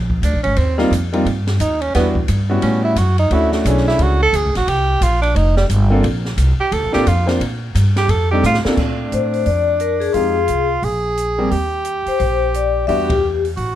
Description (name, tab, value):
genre	jazz, small-group swing and bop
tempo	175 BPM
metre	4/4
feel	swing 62% on 8ths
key	unclear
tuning	A4 = 440 Hz
part	upright bass	bass	0.0-13.8 s	F1 to Bb2	-18 LUFS	equal	none
part	open jazz drum kit	drums	0.1-13.7 s	crash cymbal, hi-hat, kick drum, ride cymbal, snare drum	-27 LUFS	equal	none
part	clear tenor saxophone	second line	0.2-13.8 s	G3 to A4	-19 LUFS	right 3 dB	none
part	clear concert grand piano	accompaniment	0.8-13.1 s	G3 to C5	-20 LUFS	equal	none
part	vibraphone with medium mallets	melody	9.1-13.4 s	G4 to E5	-18 LUFS	left 8 dB	none
room	light reverb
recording	dark, warm production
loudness	-14 LUFS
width	side -12 dB against mid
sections	0.0-8.8 A section; 8.8-13.8 B section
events	tenor saxophone solo 0.0-8.8; drum fill 8.4-8.8; band accent 13.1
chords	0.0 Bb7; 0.6 Eb69; 1.9 Em7; 2.6 A13; 3.3 Dmaj7; 4.7 C5; 5.4 F69; 6.0 Bb; 8.1 F13; 8.8 Bbmaj7; 10.1 Fm7; 10.8 Abmaj9/Bb; 11.5 Eb6; 12.9 Em7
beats	0.23 | 0.57 0.92 1.26 1.60 | 1.94 2.28 2.63 2.97 | 3.31 3.65 3.99 4.33 | 4.68 5.02 5.36 5.70 | 6.04 6.39 6.73 7.07 | 7.41 7.75 8.09 8.44 | 8.78 9.12 9.46 9.80 | 10.15 10.49 10.83 11.18 | 11.52 11.86 12.20 12.55 | 12.89 13.23 13.58